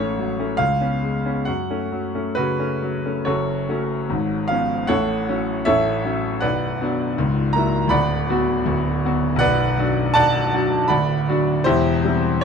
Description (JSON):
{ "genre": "classical, romantic character piece for solo piano", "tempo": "65-83 BPM", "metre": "2/4", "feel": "rubato", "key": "F# minor, B minor from 9.4 s", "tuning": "A4 = 442 Hz", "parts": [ { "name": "bright grand piano", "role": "solo", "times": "0.0-12.4 s", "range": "B0 to B5", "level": "-18 LUFS", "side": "equal", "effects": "none" } ], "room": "light reverb", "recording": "dark, warm production", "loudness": "-18 LUFS", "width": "side -6 dB against mid", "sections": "0.0-3.3 A section; 3.3-12.4 A section", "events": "none", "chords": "0.0 F#m/A; 0.6 C#7; 1.5 F#m; 4.1 C#7/G#; 4.9 F#m/A; 6.4 Bm; 7.2 F#7/C#; 7.9 Bm/D; 9.4 Bm; 10.9 Bm/D; 11.7 C/E", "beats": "0.59 | 1.46 2.36 | 3.26 4.09 | 4.88 5.65 | 6.43 7.17 | 7.91 8.66 | 9.40 10.15 | 10.90 11.66 | 12.43" }